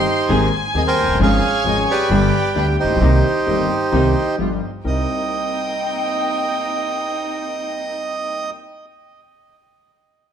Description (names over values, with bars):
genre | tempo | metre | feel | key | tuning
tango | 131 BPM | 4/4 | rubato | C minor | A4 = 440 Hz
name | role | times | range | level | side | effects
bandoneon | melody | 0.0-8.5 s | Eb4 to G5 | -20 LUFS | right 3 dB | tape echo
warm chamber violin section | second line | 0.0-8.5 s | G5 to C6 | -25 LUFS | left 3 dB | tape echo
clear grand piano | accompaniment | 0.0-8.5 s | Eb1 to Bb4 | -21 LUFS | left 2 dB | none
muted studio string section | stabs | 0.0-8.5 s | G3 to Ab4 | -28 LUFS | right 1 dB | none
upright bass | bass | 0.0-5.0 s | F1 to Eb2 | -21 LUFS | right 1 dB | none
room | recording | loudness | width
wet studio reverb, RT60 0.7 s | heard from further back in the room | -16 LUFS | side -8 dB against mid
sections
0.0-4.8 A section; 4.8-8.5 B section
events
none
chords
0.3 Abadd9; 1.2 Db/Ab; 2.1 G; 3.0 Cm7; 4.4 G7; 4.8 Cm7